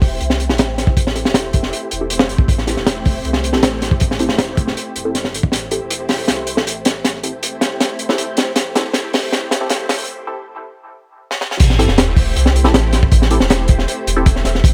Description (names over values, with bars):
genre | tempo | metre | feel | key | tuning
drum and bass, jungle | 158 BPM | 4/4 | straight | A minor | A4 = 440 Hz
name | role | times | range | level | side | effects
soft string machine | sustained chords | 0.0-14.7 s | A3 to C5 | -28 LUFS | equal | phaser, ensemble chorus
soft dub sub bass | bass | 0.0-14.7 s | E1 to C2 | -22 LUFS | equal | tube saturation
crunchy breakbeat drum kit | drums | 0.0-14.7 s | crash cymbal, hi-hat, kick drum, snare drum | -18 LUFS | equal | none
filtered dub chord stab | stabs | 0.5-14.3 s | C4 to A4 | -26 LUFS | equal | phaser, dub echo
sub drop | sound effects | 11.6-13.1 s | none | -26 LUFS | equal | none
room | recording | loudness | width
small room reverb | high-pass filter | -16 LUFS | mono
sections
0.0-11.6 A section; 11.6-14.7 B section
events
build-up 0.0-11.6; filter sweep on synth stab 0.0-11.6; filter sweep 0.0-11.6; drum fill 5.5-10.1, 11.3; break 10.1-11.6; drop 11.6-14.7; impact 11.6-13.1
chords
0.0 Am7